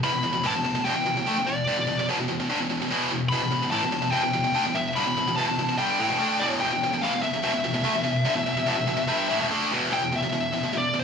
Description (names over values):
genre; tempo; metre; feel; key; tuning
metal; 146 BPM; 4/4; straight; E minor; A4 = 441 Hz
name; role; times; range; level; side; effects
high-gain lead guitar; melody; 0.0-11.0 s; C5 to B5; -26 LUFS; left 1 dB; distortion, tape echo
heavy high-gain guitar; riff; 0.0-11.0 s; E2 to D4; -24 LUFS; equal; distortion
room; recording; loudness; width
moderate studio reverb, RT60 0.8 s; studio ambience; -22 LUFS; side -6 dB against mid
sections
0.0-9.9 A section; 9.9-11.0 B section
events
none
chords
0.0 Em; 9.9 E5